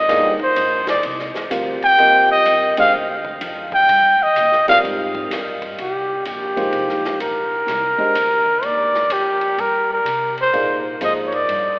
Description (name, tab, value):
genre	modal jazz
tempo	126 BPM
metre	4/4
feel	swing 66% on 8ths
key	C minor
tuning	A4 = 441 Hz
part	mellow trumpet	melody	0.0-11.8 s	G4 to G5	-15 LUFS	equal	none
part	upright bass	bass	0.0-11.8 s	G1 to C3	-34 LUFS	equal	none
part	dark upright piano	accompaniment	0.1-11.3 s	F3 to F5	-24 LUFS	equal	none
part	open jazz drum kit	drums	0.1-11.6 s	hi-hat, kick drum, ride cymbal, snare drum	-29 LUFS	equal	none
room	wet cathedral reverb, RT60 4.6 s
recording	recorded in a church or concert hall, telephone sound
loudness	-15 LUFS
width	side -27 dB against mid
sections	0.0-5.8 A section; 5.8-11.8 B section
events	trumpet solo 0.0-5.8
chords	0.0 Cm9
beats	| 0.08 0.56 1.03 1.51 | 1.99 2.46 2.94 3.41 | 3.88 4.36 4.83 5.31 | 5.79 6.26 6.73 7.21 | 7.68 8.16 8.63 9.11 | 9.58 10.06 10.53 11.01 | 11.48